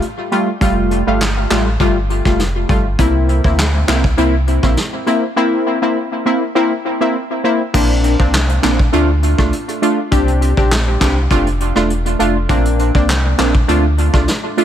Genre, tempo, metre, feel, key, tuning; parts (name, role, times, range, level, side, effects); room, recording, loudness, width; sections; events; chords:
dancehall; 101 BPM; 4/4; straight; F major; A4 = 440 Hz
synth brass stab; accompaniment; 0.0-14.6 s; G3 to G4; -16 LUFS; equal; chorus, sidechain pumping, analog delay
vintage brush drum kit; drums; 0.0-14.6 s; crash cymbal, handclaps, hi-hat, kick drum, rim click, snare drum; -18 LUFS; equal; analog delay
sub bass with octave; bass; 0.6-14.3 s; E1 to D2; -16 LUFS; equal
light reverb, small room ambience; echo-heavy mix; -12 LUFS; side -10 dB against mid
0.0-7.7 A section; 7.7-14.6 B section
break 5.4-7.7
0.0 Fadd9; 3.0 C7; 7.7 Bbadd9; 8.9 Dm; 10.1 Csus2; 11.3 F6; 12.5 Bbadd9; 13.7 Dm